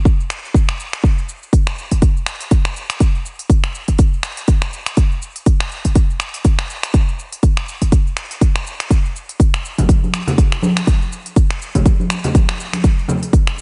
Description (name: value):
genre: house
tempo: 122 BPM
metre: 4/4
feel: swing 57% on 16ths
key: none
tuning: none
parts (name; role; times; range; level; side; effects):
- electronic kick drum; drums; 0.1-13.4 s; none; -16 LUFS; equal; none
- house drum kit; drums; 0.1-13.6 s; finger snaps, hi-hat, shaker; -27 LUFS; equal; none
- congas; percussion; 9.8-13.2 s; none; -22 LUFS; equal; none
room: little or no reverb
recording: nothing above 10.7 kHz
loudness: -17 LUFS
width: mono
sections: 0.0-13.6 A section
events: none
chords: none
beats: 0.05 0.54 1.04 | 1.53 2.02 2.51 3.00 | 3.50 3.99 4.48 4.97 | 5.46 5.95 6.45 6.94 | 7.43 7.92 8.41 8.90 | 9.40 9.89 10.38 10.87 | 11.36 11.86 12.35 12.84 | 13.33